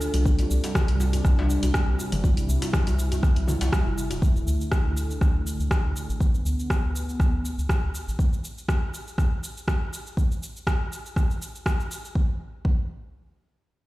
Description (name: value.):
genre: afro house.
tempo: 121 BPM.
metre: 4/4.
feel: swing 54% on 16ths.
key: unclear.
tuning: A4 = 440 Hz.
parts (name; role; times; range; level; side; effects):
warm analog pad; sustained chords; 0.0-8.2 s; C3 to E5; -31 LUFS; right 1 dB; chorus, tremolo, sidechain pumping.
deep house drum kit; drums; 0.0-12.1 s; cabasa, hi-hat, rim click, toms; -32 LUFS; equal; none.
round analog bass; bass; 0.1-8.2 s; D1 to D2; -26 LUFS; equal; sidechain pumping.
djembe; percussion; 0.1-4.2 s; none; -35 LUFS; left 2 dB; none.
electronic kick drum; drums; 0.3-12.8 s; none; -23 LUFS; equal; none.
room: light reverb.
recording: played on a big sound system in a bare room, stone room reverb.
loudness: -22 LUFS.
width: side -18 dB against mid.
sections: 0.0-12.2 A section; 12.2-13.9 B section.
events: filter sweep on analog synth pad 0.0-8.2.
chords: 0.3 C; 4.2 Dsus2; 8.2 N.C..